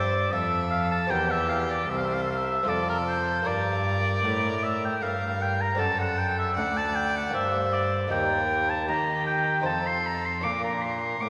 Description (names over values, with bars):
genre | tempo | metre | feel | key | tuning
classical, baroque-style sonata movement with continuo | 77 BPM | 3/4 | straight | unclear | A4 = 438 Hz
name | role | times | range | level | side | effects
warm violin | melody | 0.0-11.3 s | G4 to D5 | -36 LUFS | equal | none
clear oboe | second line | 0.0-11.3 s | Bb4 to D6 | -29 LUFS | equal | none
lute | accompaniment | 0.0-11.3 s | D2 to D5 | -37 LUFS | equal | none
warm cello | bass | 0.0-11.3 s | C2 to Eb3 | -32 LUFS | equal | none
room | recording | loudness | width
wet church reverb, RT60 2.7 s | none | -26 LUFS | mono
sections
0.0-11.3 A section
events
none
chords
0.0 F; 1.1 C7/E; 2.7 F; 3.5 Gm; 5.8 D7/F#; 7.3 Gm; 8.1 Eb; 9.7 F7; 10.4 Bb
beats
0.33 | 1.11 1.89 2.67 | 3.46 4.24 5.02 | 5.79 6.56 7.34 | 8.11 8.89 9.66 | 10.44 11.22